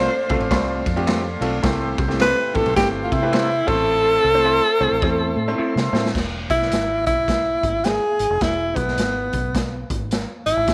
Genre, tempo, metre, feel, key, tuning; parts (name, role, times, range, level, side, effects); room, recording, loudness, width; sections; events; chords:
uptempo 1960s-style soul; 106 BPM; 4/4; swing 62% on 8ths; A minor; A4 = 445 Hz
breathy tenor saxophone; melody; 0.0-10.7 s; B3 to C5; -22 LUFS; equal
clear baby grand piano; accompaniment; 0.0-6.1 s; A2 to C5; -27 LUFS; equal
tonewheel organ; sustained chords; 0.0-6.1 s; A4 to C6; -32 LUFS; equal; slow rotary speaker
electric guitar through a small old amp; stabs; 0.0-5.7 s; A3 to C5; -32 LUFS; equal
fingered electric bass; bass; 0.0-10.7 s; E1 to C3; -29 LUFS; equal
raw garage drum kit; drums; 0.3-10.7 s; crash cymbal, hi-hat, kick drum, ride cymbal, snare drum; -27 LUFS; equal
light reverb, small room ambience; -20 LUFS; mono
0.0-6.2 A section; 6.2-10.7 B section
drum fill 3.9-6.2
0.0 F6; 1.6 C6; 3.6 Am; 6.2 E